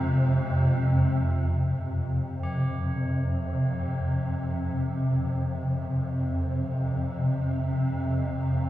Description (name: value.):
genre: dark ambient drone.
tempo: free time.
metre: none.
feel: none.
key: F minor.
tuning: A4 = 443 Hz.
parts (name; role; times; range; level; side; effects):
dark analog pad; sustained chords; 0.0-1.6 s; Ab3 to G5; -42 LUFS; equal; none.
swarming drone; drone; 0.0-8.7 s; F2 to C3; -24 LUFS; equal; built-in reverb, wide subtle chorus.
tubular bells; arpeggios; 2.4-8.7 s; G4; -44 LUFS; equal; tape echo.
room: wet lush hall reverb, RT60 2.9 s.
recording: dreamy mix soaked in reverb, small room reverb.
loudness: -24 LUFS.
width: side -14 dB against mid.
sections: 0.0-1.6 A section; 1.6-8.7 B section.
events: fade-in on tubular bells 1.6-8.7.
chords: 0.0 Fmadd9; 1.6 Fsus2.